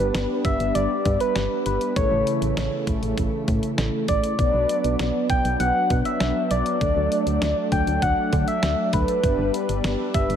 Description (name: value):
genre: synth-pop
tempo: 99 BPM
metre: 4/4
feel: straight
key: unclear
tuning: A4 = 440 Hz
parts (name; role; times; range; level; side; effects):
- soft struck synth lead; melody; 0.0-10.4 s; B4 to G5; -24 LUFS; equal; chorus, tape echo, shimmer reverb
- mellow synth brass; accompaniment; 0.0-10.4 s; C#3 to B4; -28 LUFS; right 1 dB; chorus, shimmer reverb
- brassy analog pad; sustained chords; 0.0-10.4 s; C#3 to B4; -29 LUFS; left 1 dB; chorus, shimmer reverb
- solid FM bass; bass; 0.0-10.4 s; G1 to D3; -26 LUFS; equal; none
- detuned 8-bit digital drum machine; drums; 0.1-10.4 s; hi-hat, kick drum, snare drum; -26 LUFS; equal; none
room: moderate plate reverb, RT60 2.6 s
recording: none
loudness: -20 LUFS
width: side -8 dB against mid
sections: 0.0-10.4 A section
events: none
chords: 0.0 G; 2.0 A; 4.4 Bm; 6.8 D; 9.2 G